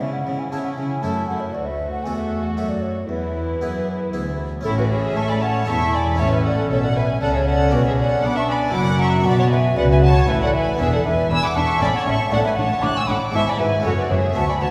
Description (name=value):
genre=classical, baroque-style concerto movement with solo episodes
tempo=117 BPM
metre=3/4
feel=straight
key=A major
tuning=A4 = 438 Hz
part: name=mellow hollow silver concert flute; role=melody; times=0.0-14.7 s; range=A4 to D6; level=-26 LUFS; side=equal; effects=none
part: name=warm studio violin section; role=melody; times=0.0-14.7 s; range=G#4 to F#6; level=-31 LUFS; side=equal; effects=none
part: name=warm chamber violin section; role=second line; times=0.0-14.7 s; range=E4 to A5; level=-29 LUFS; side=equal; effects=none
part: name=harpsichord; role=accompaniment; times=0.0-14.7 s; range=D2 to A4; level=-32 LUFS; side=equal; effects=none
part: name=warm chamber viola section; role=accompaniment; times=0.0-14.7 s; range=E3 to F#4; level=-29 LUFS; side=equal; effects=none
part: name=rich chamber cello section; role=bass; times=0.0-14.7 s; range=D2 to B3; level=-26 LUFS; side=equal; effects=none
part: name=rich chamber double bass section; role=bass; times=4.7-14.7 s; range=E1 to B2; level=-26 LUFS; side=equal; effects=none
room=wet concert hall reverb, RT60 2.3 s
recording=heard from further back in the room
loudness=-20 LUFS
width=mono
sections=0.0-4.7 A section; 4.7-14.7 B section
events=none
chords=0.0 C#m; 1.0 F#m7; 1.5 D; 3.1 E; 4.7 A; 5.7 E7; 6.2 A; 7.7 Bm; 8.8 F#7; 9.3 Bm; 10.8 E5; 11.8 A; 12.3 Bm7/A; 13.3 E/G#; 13.9 F#m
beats=| 0.01 0.52 1.03 | 1.55 2.06 2.57 | 3.10 3.62 4.14 | 4.66 5.17 5.68 | 6.19 6.71 7.22 | 7.73 8.24 8.75 | 9.26 9.78 10.29 | 10.79 11.30 11.81 | 12.32 12.83 13.34 | 13.85 14.36